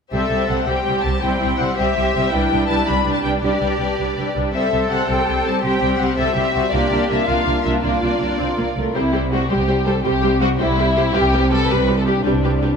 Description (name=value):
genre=cinematic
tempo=109 BPM (dotted quarters)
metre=6/8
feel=straight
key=C major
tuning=A4 = 440 Hz
part: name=rich symphonic violin section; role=melody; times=0.1-12.7 s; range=B4 to B5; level=-24 LUFS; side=left 5 dB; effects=none
part: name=dark symphonic violin section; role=second line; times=0.1-12.8 s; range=D4 to C5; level=-23 LUFS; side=left 2 dB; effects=none
part: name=clear symphonic viola section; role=accompaniment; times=0.1-12.7 s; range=G3 to G4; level=-22 LUFS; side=right 1 dB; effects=none
part: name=rich studio double bass section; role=bass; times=0.1-12.7 s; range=C2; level=-23 LUFS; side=right 2 dB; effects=none
part: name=warm symphonic cello section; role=bass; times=0.1-12.7 s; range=C3 to A4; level=-24 LUFS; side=right 1 dB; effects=none
room=wet scoring stage reverb, RT60 1.7 s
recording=none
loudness=-16 LUFS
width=side -6 dB against mid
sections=0.1-9.0 A section; 9.0-12.8 A section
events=none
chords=0.1 C; 2.3 G/C; 4.5 C; 6.7 Bb/C; 9.0 C